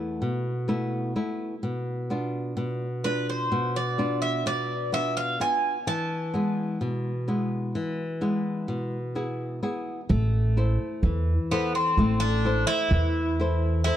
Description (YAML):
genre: greek folk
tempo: 128 BPM (eighths)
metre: 9/8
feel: straight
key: A harmonic minor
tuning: A4 = 437 Hz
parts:
  - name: flamenco guitar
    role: accompaniment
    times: 0.0-14.0 s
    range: E2 to C5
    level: -28 LUFS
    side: left 1 dB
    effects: none
  - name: Greek bouzouki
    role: melody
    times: 3.0-14.0 s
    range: B3 to A5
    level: -26 LUFS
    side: right 1 dB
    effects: none
  - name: upright bass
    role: bass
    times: 10.1-13.9 s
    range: A1 to E2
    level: -23 LUFS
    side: right 1 dB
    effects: none
room: light reverb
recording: dark, warm production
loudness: -24 LUFS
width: side -11 dB against mid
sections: 0.0-10.1 A section; 10.1-14.0 A section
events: none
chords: 0.0 Esus4; 1.6 Bdim; 5.9 E; 10.1 Am